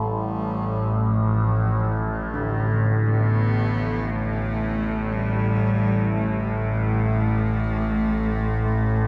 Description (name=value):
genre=dark ambient drone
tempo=free time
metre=none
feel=none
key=unclear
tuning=A4 = 436 Hz
part: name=dark cello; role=melody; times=0.0-9.1 s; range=E3 to B3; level=-31 LUFS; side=equal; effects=shimmer reverb, delay
part: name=carillon bells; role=arpeggios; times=0.0-8.4 s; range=D3 to G4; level=-39 LUFS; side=equal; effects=none
part: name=overtone-sweeping drone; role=drone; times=0.0-9.1 s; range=A1 to A2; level=-24 LUFS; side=equal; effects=chorus, built-in reverb
room=wet cathedral reverb, RT60 5.0 s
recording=none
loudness=-23 LUFS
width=mono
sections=0.0-9.1 A section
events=fade-in on cello 0.0-9.1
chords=none